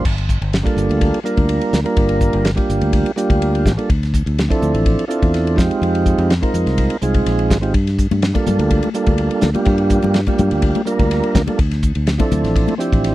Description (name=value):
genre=electric jazz fusion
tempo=125 BPM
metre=4/4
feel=straight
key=G minor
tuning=A4 = 440 Hz
part: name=mellow tonewheel organ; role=accompaniment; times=0.0-13.1 s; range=F3 to Bb4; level=-18 LUFS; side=right 2 dB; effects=slow rotary speaker
part: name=fingered electric bass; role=bass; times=0.0-13.1 s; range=G1 to G2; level=-18 LUFS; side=equal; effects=none
part: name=damped 70s drum kit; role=drums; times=0.1-13.1 s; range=crash cymbal, hi-hat, kick drum, ride cymbal, snare drum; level=-19 LUFS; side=equal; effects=none
part: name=congas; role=percussion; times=8.1-12.8 s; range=none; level=-23 LUFS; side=left 7 dB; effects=none
room=little or no reverb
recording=dry, close 1970s-style studio recording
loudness=-14 LUFS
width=side -16 dB against mid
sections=0.0-13.1 A section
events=none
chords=0.0 Gm9; 3.9 Dm9; 5.6 Fm9; 7.7 Gm9; 11.6 Dm9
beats=| 0.05 0.53 1.01 1.49 | 1.97 2.45 2.93 3.42 | 3.90 4.38 4.86 5.34 | 5.82 6.30 6.78 7.26 | 7.74 8.22 8.71 9.19 | 9.67 10.15 10.63 11.11 | 11.59 12.08 12.56 13.04